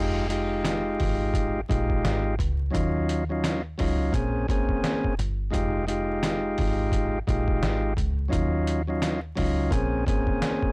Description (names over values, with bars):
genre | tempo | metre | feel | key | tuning
hip hop, boom-bap hip-hop | 86 BPM | 4/4 | swing 61% on 16ths | F minor | A4 = 440 Hz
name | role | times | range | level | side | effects
tonewheel organ | accompaniment | 0.0-10.7 s | Gb3 to Ab4 | -26 LUFS | equal | cassette tape, high-pass filter, low-pass filter
deep dub picked electric bass | bass | 0.0-10.4 s | F1 to Eb2 | -28 LUFS | equal | tube saturation
trip hop sampler-style drum kit | drums | 0.3-10.7 s | hi-hat, kick drum, snare drum | -28 LUFS | equal | none
room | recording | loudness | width
little or no reverb | dry, gritty hardware recording, transformer saturation, vinyl crackle | -23 LUFS | side -32 dB against mid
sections
0.0-10.7 A section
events
none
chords
0.0 Fm9; 2.7 Ebm9; 4.1 Bbm9; 5.5 Fm9; 8.3 Ebm9; 9.7 Bbm9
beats
0.65 1.34 2.04 | 2.74 3.44 4.13 4.83 | 5.53 6.23 6.93 7.62 | 8.32 9.02 9.72 10.41